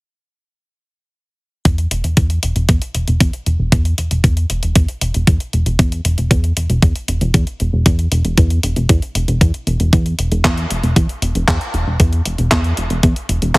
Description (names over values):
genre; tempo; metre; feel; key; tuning
italo disco; 116 BPM; 4/4; straight; unclear; A4 = 441 Hz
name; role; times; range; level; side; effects
chorused synth bass; bass; 1.7-13.6 s; E1 to E2; -16 LUFS; equal; none
detuned 8-bit digital drum machine; drums; 1.7-13.6 s; handclaps, hi-hat; -21 LUFS; left 1 dB; none
electronic kick drum; drums; 1.7-13.6 s; none; -14 LUFS; equal; none
room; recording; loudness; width
little or no reverb; heavily compressed radio sound, multiband compression; -14 LUFS; side -24 dB against mid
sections
1.7-13.6 A section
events
none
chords
none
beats
| 1.65 2.17 2.69 3.21 | 3.72 4.24 4.76 5.27 | 5.79 6.31 6.83 7.34 | 7.86 8.38 8.89 9.41 | 9.93 10.45 10.96 11.48 | 12.00 12.52 13.03 13.55